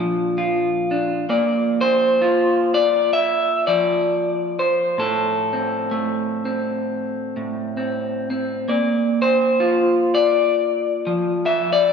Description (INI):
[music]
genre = folk, solo fingerstyle acoustic guitar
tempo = 65 BPM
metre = 4/4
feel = swing 58% on 8ths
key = unclear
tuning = A4 = 441 Hz
[part]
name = electric guitar through a small old amp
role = solo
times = 0.0-11.9 s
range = A2 to E5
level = -17 LUFS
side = left 1 dB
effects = none
[sound]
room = wet concert hall reverb, RT60 1.8 s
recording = recorded in a church or concert hall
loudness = -18 LUFS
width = side -6 dB against mid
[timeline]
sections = 0.0-11.9 A section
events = none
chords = 0.0 Bb; 1.3 Bbadd9; 5.0 Am; 8.7 Bb